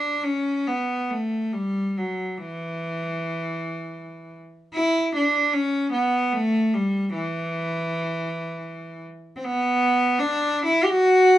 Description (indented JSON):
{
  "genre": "classical, free, expressive piece for unaccompanied cello",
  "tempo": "76 BPM",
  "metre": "3/4",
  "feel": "uneven beats, rubato",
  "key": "unclear",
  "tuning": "A4 = 440 Hz",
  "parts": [
    { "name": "rich cello", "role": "solo", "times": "0.0-11.4 s", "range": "E3 to G4", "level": "-21 LUFS", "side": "equal", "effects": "none" }
  ],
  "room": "light reverb",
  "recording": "nothing above 10.7 kHz",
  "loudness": "-21 LUFS",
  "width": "side -13 dB against mid",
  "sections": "0.0-11.4 A section",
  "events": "none",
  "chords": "none"
}